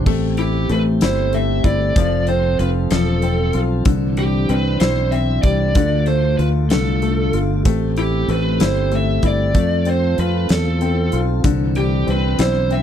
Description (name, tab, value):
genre	six-eight pop ballad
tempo	63 BPM (dotted quarters)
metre	6/8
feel	straight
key	A minor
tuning	A4 = 441 Hz
part	clear grand piano	accompaniment	0.0-12.8 s	D3 to F4	-23 LUFS	left 15 dB	none
part	mellow tonewheel organ	sustained chords	0.0-12.8 s	D3 to A4	-25 LUFS	right 4 dB	slow rotary speaker
part	fingered electric bass	bass	0.0-12.8 s	E1 to F2	-19 LUFS	right 1 dB	none
part	huge arena drum kit	drums	0.1-12.8 s	crash cymbal, hi-hat, kick drum, snare drum	-21 LUFS	equal	none
part	lead guitar through a small cranked amp	melody	0.4-12.8 s	G4 to E5	-22 LUFS	right 2 dB	overdrive
room	little or no reverb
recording	dry, close 1970s-style studio recording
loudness	-15 LUFS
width	side -9 dB against mid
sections	0.1-12.8 A section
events	none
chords	0.1 Am7; 2.0 F; 3.9 Cadd9; 5.8 Dm; 7.7 Am7; 9.5 F; 11.4 Cadd9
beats	| 0.06 1.01 | 1.96 2.91 | 3.86 4.81 | 5.76 6.70 | 7.65 8.60 | 9.55 10.49 | 11.44 12.39